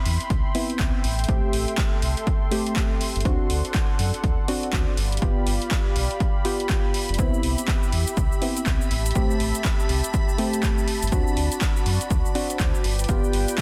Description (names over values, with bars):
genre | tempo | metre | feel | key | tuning
deep house | 122 BPM | 4/4 | swing 61% on 16ths | C major | A4 = 440 Hz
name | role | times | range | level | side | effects
warm analog pad | sustained chords | 0.0-13.6 s | F4 to C6 | -34 LUFS | equal | chorus, sidechain pumping
deep mellow chord stab | stabs | 0.0-13.6 s | A3 to G4 | -31 LUFS | equal | chorus, sidechain pumping, delay
sub bass with octave | bass | 0.1-13.5 s | F1 to F#2 | -28 LUFS | equal | sidechain pumping
punchy analog drum machine | drums | 0.1-13.6 s | cabasa, handclaps, hi-hat | -33 LUFS | equal | overdrive
electronic kick drum | drums | 0.3-13.6 s | none | -26 LUFS | equal | overdrive
soft string machine | texture | 7.2-13.6 s | B5 | -40 LUFS | equal | ensemble chorus, sidechain pumping
room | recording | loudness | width
little or no reverb | dense, heavily limited modern master | -23 LUFS | mono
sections
0.0-13.6 A section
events
none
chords
0.0 Cmaj7; 1.0 Am7; 3.3 D7; 5.0 G7; 7.2 Cmaj7; 8.9 Am7; 11.1 D7; 12.8 G7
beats
0.30 0.79 | 1.28 1.78 2.27 2.76 | 3.25 3.74 4.24 4.73 | 5.22 5.71 6.20 6.70 | 7.19 7.68 8.17 8.66 | 9.15 9.65 10.14 10.63 | 11.12 11.61 12.11 12.60 | 13.09 13.58